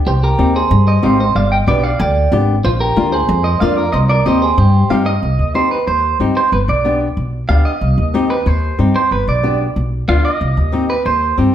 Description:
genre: latin, cumbia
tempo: 186 BPM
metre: 4/4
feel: straight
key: C minor, C harmonic minor from 5.2 s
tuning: A4 = 439 Hz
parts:
  - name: clean electric guitar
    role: melody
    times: 0.1-11.4 s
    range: F4 to G5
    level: -17 LUFS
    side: right 3 dB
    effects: spring reverb, slapback echo, plate reverb
  - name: upright bass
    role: bass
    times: 0.1-11.5 s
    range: G1 to G2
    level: -15 LUFS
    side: equal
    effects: none
  - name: flamenco guitar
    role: accompaniment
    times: 0.4-11.5 s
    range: Bb3 to G4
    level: -18 LUFS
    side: left 3 dB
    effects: none
room: moderate large studio reverb, RT60 1.1 s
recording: heard from further back in the room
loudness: -12 LUFS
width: side -10 dB against mid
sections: 0.0-5.2 A section; 5.2-11.5 B section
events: none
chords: 0.1 Cm; 1.4 G; 2.6 Bb; 3.9 Cm; 6.5 G; 7.8 Cm; 9.1 G7; 10.4 Cm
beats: | 0.06 0.39 0.71 1.03 | 1.35 1.68 2.00 2.32 | 2.64 2.97 3.29 3.61 | 3.93 4.26 4.58 4.90 | 5.23 5.55 5.87 6.20 | 6.52 6.84 7.17 7.49 | 7.82 8.14 8.46 8.79 | 9.11 9.44 9.76 10.08 | 10.41 10.73 11.05 11.38

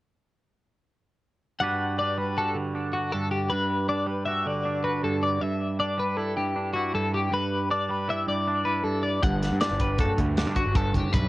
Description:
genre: math rock and midwest emo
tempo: 158 BPM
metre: 5/4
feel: straight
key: G major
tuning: A4 = 438 Hz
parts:
  - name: twangy electric guitar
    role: accompaniment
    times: 1.6-11.3 s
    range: G2 to B4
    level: -28 LUFS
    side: right 2 dB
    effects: wide subtle chorus
  - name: twelve-string electric guitar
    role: arpeggios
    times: 1.6-11.3 s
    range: F#4 to F#5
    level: -27 LUFS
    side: left 2 dB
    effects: tremolo, tape echo
  - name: fuzz picked electric bass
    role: bass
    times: 9.2-11.3 s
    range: F#1 to G2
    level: -27 LUFS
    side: equal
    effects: overdrive
  - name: modern studio drum kit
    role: drums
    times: 9.2-11.2 s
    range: hi-hat, kick drum, snare drum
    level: -27 LUFS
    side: equal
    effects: none
room: light reverb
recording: worn, warbling old tape, cassette tape, warbly pitch drift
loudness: -24 LUFS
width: side -17 dB against mid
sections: 1.6-11.3 A section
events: none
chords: 1.6 Gmaj7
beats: | 1.61 1.99 2.37 2.75 3.13 | 3.51 3.89 4.27 4.65 5.03 | 5.42 5.80 6.18 6.56 6.94 | 7.32 7.70 8.08 8.46 8.85 | 9.23 9.61 9.99 10.37 10.75 | 11.13

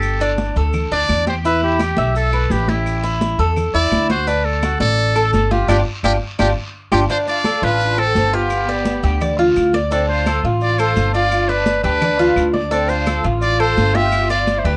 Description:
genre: latin, Cuban son and guajira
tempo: 170 BPM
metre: 4/4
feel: straight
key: unclear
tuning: A4 = 440 Hz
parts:
  - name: trumpet with metal mute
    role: melody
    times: 0.0-14.8 s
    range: E4 to E5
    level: -22 LUFS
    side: equal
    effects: none
  - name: Cuban tres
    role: arpeggios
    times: 0.0-14.8 s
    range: D4 to E5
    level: -22 LUFS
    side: equal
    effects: none
  - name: upright bass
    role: bass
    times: 0.0-14.8 s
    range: G1 to E2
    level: -23 LUFS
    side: equal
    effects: none
  - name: claves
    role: percussion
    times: 0.0-14.3 s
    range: none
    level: -36 LUFS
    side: equal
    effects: none
  - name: congas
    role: percussion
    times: 0.0-14.8 s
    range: none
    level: -27 LUFS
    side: equal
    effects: none
  - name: guiro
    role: percussion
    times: 0.0-14.8 s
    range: none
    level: -38 LUFS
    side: equal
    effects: none
  - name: maracas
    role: percussion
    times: 0.0-14.8 s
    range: none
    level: -44 LUFS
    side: equal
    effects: none
  - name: rich symphonic violin section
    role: second line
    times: 7.1-14.8 s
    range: B3 to G4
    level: -29 LUFS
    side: equal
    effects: none
room: light reverb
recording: worn, warbling old tape, cassette tape, warbly pitch drift, nothing above 10.7 kHz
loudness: -17 LUFS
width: mono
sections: 0.0-7.1 A section; 7.1-14.8 B section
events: band accent 5.7-7.1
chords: 0.0 Gsus2; 1.4 Em; 2.9 A5; 4.3 D5; 5.7 G5; 7.1 Dm7; 8.5 G7; 9.9 Dm7; 11.3 G7; 12.7 Dm7; 14.1 G7(no3)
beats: | 0.03 0.38 0.74 1.09 | 1.45 1.80 2.15 2.51 | 2.86 3.21 3.57 3.92 | 4.27 4.63 4.98 5.33 | 5.68 6.04 6.39 6.74 | 7.10 7.45 7.80 8.15 | 8.51 8.86 9.21 9.56 | 9.91 10.26 10.62 10.97 | 11.32 11.67 12.02 12.37 | 12.72 13.07 13.42 13.77 | 14.12 14.47

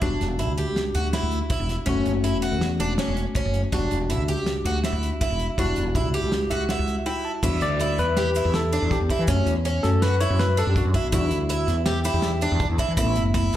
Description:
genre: progressive instrumental, band music in an uneven meter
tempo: 162 BPM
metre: 5/4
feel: straight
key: E dorian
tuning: A4 = 441 Hz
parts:
  - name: barky tine electric piano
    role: accompaniment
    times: 0.0-13.5 s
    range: G3 to A5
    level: -27 LUFS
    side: left 3 dB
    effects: slapback echo
  - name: picked twelve-string acoustic guitar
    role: arpeggios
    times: 0.0-13.6 s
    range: C#4 to G4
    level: -27 LUFS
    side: right 2 dB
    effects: tape echo, slapback echo
  - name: woody fretless electric bass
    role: bass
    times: 0.0-13.6 s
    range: E1 to E3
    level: -24 LUFS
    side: equal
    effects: analog chorus
  - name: damped 70s drum kit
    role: drums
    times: 0.0-13.6 s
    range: crash cymbal, hi-hat, kick drum, snare drum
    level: -28 LUFS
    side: equal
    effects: none
  - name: egg shaker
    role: percussion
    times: 7.4-13.1 s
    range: none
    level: -40 LUFS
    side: left 2 dB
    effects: none
  - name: breathy trombone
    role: second line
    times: 11.1-12.6 s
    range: D4 to G4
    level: -32 LUFS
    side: left 2 dB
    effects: tape echo, slapback echo
room: small room ambience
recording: live gig heard through the venue's PA, club reverb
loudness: -21 LUFS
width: side -12 dB against mid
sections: 0.0-7.4 A section; 7.4-13.6 B section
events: tine electric piano fill 6.3-7.4; break 7.1-7.4; tine electric piano solo 7.4-13.6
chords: 0.0 Em7; 1.9 F#m; 3.7 Em7; 9.3 F#m; 11.1 Em7; 13.0 Asus2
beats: | 0.02 0.39 0.77 1.14 1.51 | 1.88 2.25 2.62 2.99 3.36 | 3.73 4.10 4.47 4.84 5.21 | 5.58 5.95 6.32 6.69 7.06 | 7.43 7.80 8.17 8.54 8.91 | 9.28 9.65 10.02 10.39 10.76 | 11.13 11.50 11.87 12.24 12.61 | 12.98 13.35

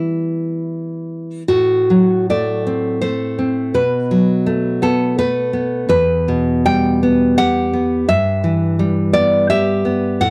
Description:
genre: romantic piece for solo classical guitar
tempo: 70-86 BPM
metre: 3/4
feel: rubato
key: E minor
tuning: A4 = 441 Hz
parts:
  - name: nylon-string guitar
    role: solo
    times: 0.0-10.3 s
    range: E2 to G5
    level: -17 LUFS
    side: equal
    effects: none
room: light reverb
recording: dry, close 1970s-style studio recording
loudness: -17 LUFS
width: mono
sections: 0.0-1.5 A section; 1.5-10.3 B section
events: none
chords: 0.0 Em; 1.5 F#dim/A; 3.8 B5; 5.9 Em; 8.1 Em/G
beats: 0.67 | 1.49 2.29 3.02 | 3.75 4.47 5.19 | 5.90 6.67 7.39 | 8.09 8.79 9.50 | 10.22

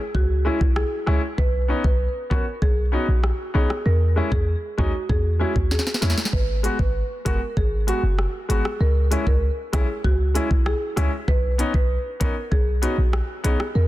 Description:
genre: dancehall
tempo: 97 BPM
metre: 4/4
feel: straight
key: unclear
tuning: A4 = 443 Hz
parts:
  - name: marimba with medium mallets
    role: melody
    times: 0.1-13.9 s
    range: E4 to B4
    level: -28 LUFS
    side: right 1 dB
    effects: ping-pong delay
  - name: warm 808-style bass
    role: bass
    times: 0.1-13.9 s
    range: F#1 to E2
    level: -21 LUFS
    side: equal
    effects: none
  - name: afro-pop drum kit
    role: drums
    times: 0.1-13.7 s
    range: hi-hat, kick drum, rim click, snare drum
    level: -24 LUFS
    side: equal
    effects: none
  - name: clear baby grand piano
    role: accompaniment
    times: 0.4-13.6 s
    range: G#3 to F#4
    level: -28 LUFS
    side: left 2 dB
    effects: none
room: little or no reverb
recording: dense, heavily limited modern master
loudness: -19 LUFS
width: side -16 dB against mid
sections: 0.0-13.9 A section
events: break 0.0-6.3; drum fill 5.7-6.3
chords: 0.0 C#m; 1.4 Badd9; 3.9 E6; 6.3 G#m7; 8.8 C#m; 11.3 Badd9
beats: 0.15 0.77 | 1.38 2.00 2.62 3.24 | 3.86 4.48 5.09 5.71 | 6.33 6.95 7.57 8.19 | 8.81 9.43 10.04 10.66 | 11.28 11.90 12.52 13.14 | 13.76

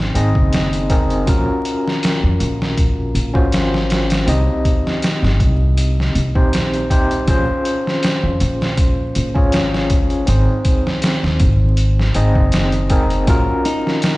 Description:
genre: trip hop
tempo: 80 BPM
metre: 4/4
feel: swing 54% on 16ths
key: unclear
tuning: A4 = 440 Hz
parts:
  - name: overdriven tine electric piano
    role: accompaniment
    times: 0.0-14.2 s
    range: C4 to Eb5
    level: -20 LUFS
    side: left 1 dB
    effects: tremolo, tape echo
  - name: upright bass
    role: bass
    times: 0.0-13.5 s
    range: Gb1 to F2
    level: -18 LUFS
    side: equal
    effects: none
  - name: trip hop sampler-style drum kit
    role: drums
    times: 0.0-14.2 s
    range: hi-hat, kick drum, snare drum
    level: -18 LUFS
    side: equal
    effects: none
  - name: semi-hollow electric guitar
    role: melody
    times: 13.7-14.2 s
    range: Eb4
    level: -21 LUFS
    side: left 1 dB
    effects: none
room: little or no reverb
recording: played on a big sound system in a bare room, stone room reverb, vinyl crackle, nothing above 10.9 kHz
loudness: -14 LUFS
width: side -20 dB against mid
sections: 0.0-14.2 A section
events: none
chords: 0.0 Abadd9; 1.3 Gbmaj9#11; 4.3 Cm; 7.3 Bbm7; 10.3 Abadd9; 13.3 Ebm7/Bb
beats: 0.53 | 1.28 2.03 2.78 3.53 | 4.28 5.03 5.78 6.53 | 7.28 8.03 8.78 9.53 | 10.28 11.03 11.78 12.53 | 13.28 14.03

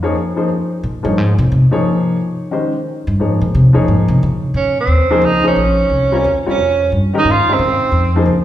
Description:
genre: modal jazz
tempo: 177 BPM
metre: 3/4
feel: swing 64% on 8ths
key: Bb dorian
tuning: A4 = 438 Hz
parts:
  - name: warm baby grand piano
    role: accompaniment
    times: 0.0-8.3 s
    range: Eb3 to Db5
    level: -17 LUFS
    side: left 2 dB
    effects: none
  - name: upright bass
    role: bass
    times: 0.0-8.4 s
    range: Bb1 to Db3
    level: -15 LUFS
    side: equal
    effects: none
  - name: warm tenor saxophone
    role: melody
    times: 4.6-8.2 s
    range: C4 to F4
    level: -14 LUFS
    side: right 3 dB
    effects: none
room: wet recital hall reverb, RT60 1.7 s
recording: recorded in a church or concert hall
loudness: -12 LUFS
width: side -12 dB against mid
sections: 0.0-4.6 A section; 4.6-8.4 B section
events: upright bass solo 0.0-4.6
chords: 0.0 Bbm9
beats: 0.15 | 0.49 0.83 1.17 | 1.50 1.84 2.18 | 2.52 2.86 3.20 | 3.54 3.88 4.21 | 4.55 4.89 5.23 | 5.57 5.91 6.25 | 6.59 6.93 7.26 | 7.60 7.94 8.28

